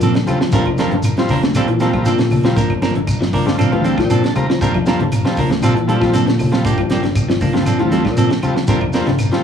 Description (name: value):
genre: afrobeat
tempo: 118 BPM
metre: 4/4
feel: straight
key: G minor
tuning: A4 = 440 Hz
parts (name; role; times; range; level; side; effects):
- semi-hollow electric guitar; arpeggios; 0.0-9.4 s; D3 to F3; -22 LUFS; left 5 dB; ensemble chorus
- semi-hollow electric guitar; stabs; 0.0-9.2 s; F3 to Bb4; -20 LUFS; right 5 dB; analog delay
- modern bright fingered electric bass; bass; 0.0-9.3 s; F1 to Bb2; -19 LUFS; left 1 dB; none
- tight funk drum kit; drums; 0.0-9.4 s; hi-hat, kick drum, snare drum; -22 LUFS; right 2 dB; cassette tape
- congas; percussion; 0.0-9.3 s; none; -23 LUFS; left 1 dB; none
- shekere; percussion; 0.0-9.3 s; none; -22 LUFS; left 1 dB; none
- combo organ; accompaniment; 0.3-9.4 s; G3 to Bb5; -23 LUFS; left 3 dB; none
- claves; percussion; 0.3-9.3 s; none; -36 LUFS; equal; none
room: light reverb, studio ambience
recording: home recording on cassette, small room reverb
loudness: -13 LUFS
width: side -8 dB against mid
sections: 0.0-9.4 A section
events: transistor combo organ fill 3.1-4.6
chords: 0.0 Bbmaj9; 0.5 Gm7; 1.5 Bbmaj9; 2.6 Gm7; 3.6 Bbmaj9; 4.6 Gm7; 5.6 Bbmaj9; 6.6 Gm7; 7.7 Bbmaj9; 8.7 Gm7